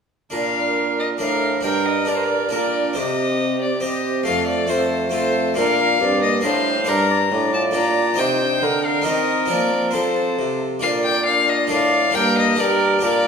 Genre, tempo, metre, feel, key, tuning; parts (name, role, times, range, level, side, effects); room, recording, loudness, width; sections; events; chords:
classical, renaissance-style consort dance; 137 BPM; 3/4; straight; Bb major; A4 = 439 Hz
rich violin; melody; 0.3-13.3 s; C5 to Bb5; -22 LUFS; left 4 dB
warm viola; second line; 0.3-13.3 s; G4 to D5; -24 LUFS; right 3 dB
harpsichord; accompaniment; 0.3-13.3 s; F2 to Eb5; -24 LUFS; left 1 dB
mellow trombone; accompaniment; 0.3-13.3 s; Bb3 to G4; -26 LUFS; equal
mellow bassoon; bass; 0.3-13.3 s; F2 to F3; -25 LUFS; right 1 dB
wet recital hall reverb, RT60 1.6 s; recorded in a church or concert hall; -17 LUFS; side -6 dB against mid
0.3-10.8 A section; 10.8-13.3 A section
0.3 Bb; 1.6 Gm; 3.0 Cm; 4.3 F; 5.6 Bb; 8.2 Cm; 9.5 Fsus4; 9.9 F; 10.8 Bb; 12.1 Gm